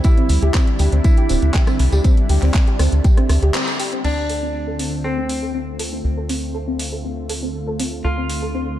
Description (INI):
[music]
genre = progressive house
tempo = 120 BPM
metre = 4/4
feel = straight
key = D minor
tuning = A4 = 440 Hz
[part]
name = semi-hollow electric guitar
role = melody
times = 0.0-8.8 s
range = C4 to F4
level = -26 LUFS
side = right 1 dB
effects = sidechain pumping, digital delay
[part]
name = lush unison pad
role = sustained chords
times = 0.0-8.8 s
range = D3 to F4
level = -28 LUFS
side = equal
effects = chorus, phaser, sidechain pumping
[part]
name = soft round pluck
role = arpeggios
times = 0.0-8.7 s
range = C4 to A4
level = -26 LUFS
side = equal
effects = ensemble chorus, sidechain pumping, dub echo
[part]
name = compact cocktail drum kit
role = drums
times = 0.0-3.9 s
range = hi-hat, snare drum, tambourine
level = -36 LUFS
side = left 1 dB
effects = sidechain pumping on hats, high-pass filter on hats, high-pass filter on snare, sidechain pumping on perc, high-pass filter on perc, high-pass filter on room
[part]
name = electronic kick drum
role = drums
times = 0.0-3.1 s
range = none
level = -14 LUFS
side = equal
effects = none
[part]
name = pop drum kit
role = drums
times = 0.0-8.4 s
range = crash cymbal, handclaps, hi-hat, rim click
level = -27 LUFS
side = equal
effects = sidechain pumping on hats, sidechain pumping on cymbals
[part]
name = tight sequencer bass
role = bass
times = 0.3-8.8 s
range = D1 to D2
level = -20 LUFS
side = equal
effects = sidechain pumping
[sound]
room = light reverb, small room ambience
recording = dark, warm production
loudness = -16 LUFS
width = side -12 dB against mid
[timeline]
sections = 0.0-4.0 A section; 4.0-8.8 B section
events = break 3.5-4.0; band accent 3.5; filter sweep on synth pluck 4.0-8.8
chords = 0.0 Cadd9/D; 4.0 Dm7